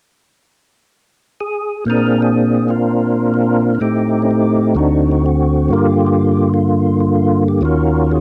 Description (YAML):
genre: jazz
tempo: 125 BPM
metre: 4/4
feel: swing 68% on 8ths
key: unclear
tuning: A4 = 440 Hz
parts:
  - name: percussive tonewheel organ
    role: solo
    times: 1.4-8.2 s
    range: D2 to Bb4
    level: -15 LUFS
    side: equal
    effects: slow rotary speaker, overdrive, chorus vibrato
room: little or no reverb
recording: dry, close 1970s-style studio recording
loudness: -15 LUFS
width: mono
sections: 0.0-1.9 A section; 1.9-8.2 B section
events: none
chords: 0.0 N.C.; 1.9 Bb7; 3.8 Am7b5; 4.7 D7b9; 5.7 Gm7; 7.6 Ebm7